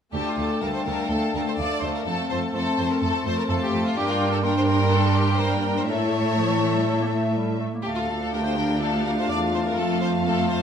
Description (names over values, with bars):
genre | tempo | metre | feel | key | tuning
quick classical-period movement for symphony orchestra | 124 BPM | 4/4 | straight | D minor | A4 = 443 Hz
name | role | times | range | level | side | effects
clear studio violin section | melody | 0.1-10.6 s | E5 to A5 | -34 LUFS | left 4 dB | none
clear studio violin section | second line | 0.1-10.6 s | F4 to D5 | -29 LUFS | left 2 dB | none
concert flute | second line | 0.1-10.6 s | F5 to C6 | -33 LUFS | left 2 dB | none
dark cor anglais | second line | 0.1-10.6 s | C5 to G5 | -32 LUFS | right 2 dB | none
warm clarinet | second line | 0.1-10.6 s | E3 to C4 | -30 LUFS | left 2 dB | none
clear studio viola section | accompaniment | 0.1-10.6 s | A3 to Bb4 | -29 LUFS | right 1 dB | none
mellow French horn section | sustained chords | 0.1-10.6 s | A3 to F4 | -29 LUFS | left 6 dB | none
rich studio cello section | bass | 0.1-10.6 s | D2 to A2 | -26 LUFS | right 4 dB | none
room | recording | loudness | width
wet recital hall reverb, RT60 1.4 s | none | -21 LUFS | side -8 dB against mid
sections
0.1-10.6 A section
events
none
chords
0.1 Dm; 2.1 F; 4.0 Gm; 5.9 A; 7.9 Dm; 9.8 F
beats
| 0.14 0.63 1.11 1.59 | 2.06 2.55 3.02 3.50 | 3.97 4.44 4.92 5.40 | 5.89 6.38 6.87 7.36 | 7.86 8.34 8.82 9.31 | 9.79 10.28